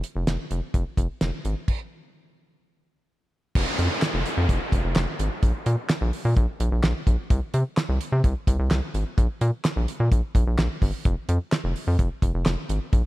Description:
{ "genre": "synth-pop", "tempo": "128 BPM", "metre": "4/4", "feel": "straight", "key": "unclear", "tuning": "A4 = 443 Hz", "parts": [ { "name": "damped 70s drum kit", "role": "drums", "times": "0.0-13.0 s", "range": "crash cymbal, handclaps, hi-hat, kick drum, snare drum", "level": "-24 LUFS", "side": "equal", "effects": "none" }, { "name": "rubbery square bass", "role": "bass", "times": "0.2-13.0 s", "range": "F1 to C3", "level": "-23 LUFS", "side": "equal", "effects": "none" }, { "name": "downlifter", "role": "sound effects", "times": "3.6-7.3 s", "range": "none", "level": "-30 LUFS", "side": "equal", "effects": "none" } ], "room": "light reverb", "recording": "none", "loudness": "-22 LUFS", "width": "side -17 dB against mid", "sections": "0.0-3.6 A section; 3.6-13.1 B section", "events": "stop 1.7-3.6", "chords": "none" }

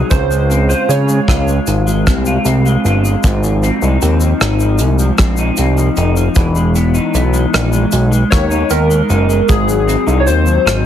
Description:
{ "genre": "indie pop, bedroom pop", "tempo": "77 BPM", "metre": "4/4", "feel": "straight", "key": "Ab major", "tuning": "A4 = 440 Hz", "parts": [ { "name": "warbly lo-fi synth keys", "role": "melody", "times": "0.0-1.6, 8.3-10.9 s", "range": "Ab4 to Db5", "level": "-17 LUFS", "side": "equal", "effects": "lush chorus, tape echo" }, { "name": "electric guitar through a small old amp", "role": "accompaniment", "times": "0.0-10.9 s", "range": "Ab2 to F4", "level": "-17 LUFS", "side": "left 1 dB", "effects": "analog chorus, vibrato effect" }, { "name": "fat analog bass", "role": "bass", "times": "0.0-10.9 s", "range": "E1 to Db3", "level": "-14 LUFS", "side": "equal", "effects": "none" }, { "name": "soft brush drum kit", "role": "drums", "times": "0.1-10.9 s", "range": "hi-hat, kick drum, rim click, shaker", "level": "-17 LUFS", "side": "equal", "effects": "none" } ], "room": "light reverb", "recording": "heavily compressed radio sound, multiband compression", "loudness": "-11 LUFS", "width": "side -10 dB against mid", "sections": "0.0-10.9 A section", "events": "none", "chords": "0.1 Dbmaj7; 3.2 Ab6; 6.4 Emaj7; 9.5 Ab7" }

